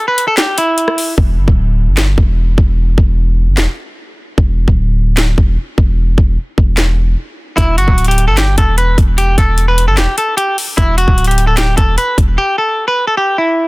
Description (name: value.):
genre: hip hop, trap.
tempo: 150 BPM.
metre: 4/4.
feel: half-time.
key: E minor.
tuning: A4 = 440 Hz.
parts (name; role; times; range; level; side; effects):
semi-hollow electric guitar; melody; 0.0-1.1, 7.6-13.7 s; E4 to B4; -14 LUFS; equal; none.
trap drum kit; drums; 0.2-12.3 s; handclaps, hi-hat, kick drum, rim click, snare drum; -13 LUFS; equal; none.
long sustained 808-style bass; bass; 1.2-12.4 s; D1 to G1; -12 LUFS; equal; none.
room: digital ambience.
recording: dense, heavily limited modern master.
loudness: -10 LUFS.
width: side -23 dB against mid.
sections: 0.0-1.2 A section; 1.2-13.7 B section.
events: break 0.0-1.2, 12.4-13.7; hi-hats muted 1.2-7.6.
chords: 0.0 N.C.; 1.2 Em; 4.4 Dsus2; 7.6 Em; 10.8 Dsus2.